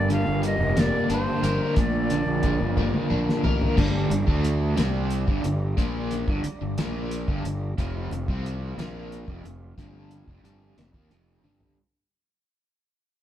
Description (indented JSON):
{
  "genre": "psychedelic rock",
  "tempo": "60 BPM (dotted quarters)",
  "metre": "6/8",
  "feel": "straight",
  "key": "G minor",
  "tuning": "A4 = 440 Hz",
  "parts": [
    { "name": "breathy bright concert flute", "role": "melody", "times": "0.0-3.1 s", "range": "C5 to F5", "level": "-29 LUFS", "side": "equal", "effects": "none" },
    { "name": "combo organ", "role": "sustained chords", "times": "0.0-11.8 s", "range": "C3 to Bb5", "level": "-37 LUFS", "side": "right 3 dB", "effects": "none" },
    { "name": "crunchy overdriven guitar", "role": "riff", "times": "0.0-11.8 s", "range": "F2 to Bb4", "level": "-27 LUFS", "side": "equal", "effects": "tremolo" },
    { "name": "fuzz fingered electric bass", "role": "bass", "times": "0.0-11.7 s", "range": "F1 to Eb2", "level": "-28 LUFS", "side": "equal", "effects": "overdrive" },
    { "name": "cloth-damped thuddy drum kit", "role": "drums", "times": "0.1-11.8 s", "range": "crash cymbal, hi-hat, kick drum, snare drum, toms", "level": "-26 LUFS", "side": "equal", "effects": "none" },
    { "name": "congas", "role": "percussion", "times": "0.1-11.8 s", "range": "none", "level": "-36 LUFS", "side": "left 5 dB", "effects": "none" }
  ],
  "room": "moderate stone room reverb, RT60 1.0 s",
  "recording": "band playing live in one room",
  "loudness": "-22 LUFS",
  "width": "side -11 dB against mid",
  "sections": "0.0-3.8 A section; 3.8-11.8 B section",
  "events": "drum fill 2.8-3.8, 11.4-11.8; fade-out 3.8-11.8",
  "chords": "0.0 Gm; 1.8 Bb; 3.8 Gm; 7.8 F5"
}